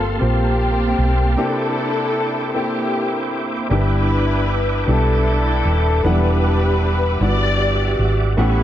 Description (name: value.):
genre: gospel.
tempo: 52 BPM (dotted quarters).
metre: 6/8.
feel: straight.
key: G major from 3.7 s.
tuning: A4 = 440 Hz.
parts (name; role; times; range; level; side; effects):
muted studio string section; melody; 0.0-8.6 s; Bb3 to D5; -21 LUFS; left 1 dB; dub echo.
warm concert grand piano; accompaniment; 0.0-8.6 s; G2 to F#5; -23 LUFS; left 1 dB; dub echo.
tonewheel organ; sustained chords; 0.0-8.6 s; G3 to D6; -27 LUFS; right 2 dB; chorus vibrato, fast rotary speaker.
hollow-body short-scale fingered electric bass; bass; 0.0-8.6 s; Eb1 to B1; -18 LUFS; right 1 dB; none.
room: small room ambience.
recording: echo-heavy mix.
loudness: -16 LUFS.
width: side -12 dB against mid.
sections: 0.0-3.7 A section; 3.7-8.6 A section.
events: break 1.4-3.7.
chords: 0.0 Gm11; 1.4 C9; 3.7 G6; 6.0 Em9.